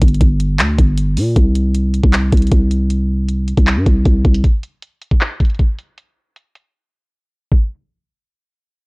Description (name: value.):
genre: hip hop, trap.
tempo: 156 BPM.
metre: 4/4.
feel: half-time.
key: unclear.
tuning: A4 = 440 Hz.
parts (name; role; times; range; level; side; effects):
growling 808-style bass; bass; 0.0-4.4 s; G1 to Bb2; -14 LUFS; equal; none.
trap drum kit; drums; 0.0-7.6 s; handclaps, hi-hat, kick drum; -14 LUFS; equal; none.
room: little or no reverb.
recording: dry, gritty hardware recording, transformer saturation, cassette tape, low-pass filter.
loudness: -13 LUFS.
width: side -32 dB against mid.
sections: 0.0-1.4 A section; 1.4-7.5 B section; 7.5-8.9 C section.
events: drums muted 6.7-7.5.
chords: none.